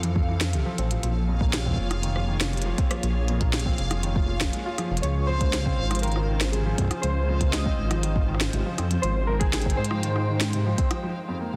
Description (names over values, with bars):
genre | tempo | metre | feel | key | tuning
IDM | 120 BPM | 4/4 | straight | unclear | A4 = 440 Hz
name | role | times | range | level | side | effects
glassy FM pad | sustained chords | 0.0-11.0 s | Db3 to G5 | -37 LUFS | equal | ensemble chorus, built-in reverb
felt-muted upright piano | arpeggios | 0.0-11.6 s | F2 to F4 | -36 LUFS | equal | digital delay
dark detuned saw bass | bass | 0.0-10.7 s | F1 to Ab2 | -28 LUFS | equal | tube saturation
glitchy drum kit | drums | 0.0-11.0 s | hi-hat, rim click, snare drum | -33 LUFS | equal | studio reverb
backwards swelling texture | texture | 0.0-11.0 s | F5 | -41 LUFS | equal | built-in reverb
electronic kick drum | drums | 0.2-10.9 s | none | -28 LUFS | equal | studio reverb
warbly lo-fi synth keys | melody | 5.0-11.0 s | Ab4 to Eb5 | -34 LUFS | equal | chorus, digital delay
room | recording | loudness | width
light reverb, digital ambience | dense, heavily limited modern master | -25 LUFS | mono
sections
0.0-11.6 A section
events
break 11.0-11.6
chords
0.0 Fmaj7; 1.0 Bbm7; 5.0 Dbmaj7; 9.0 Abmaj7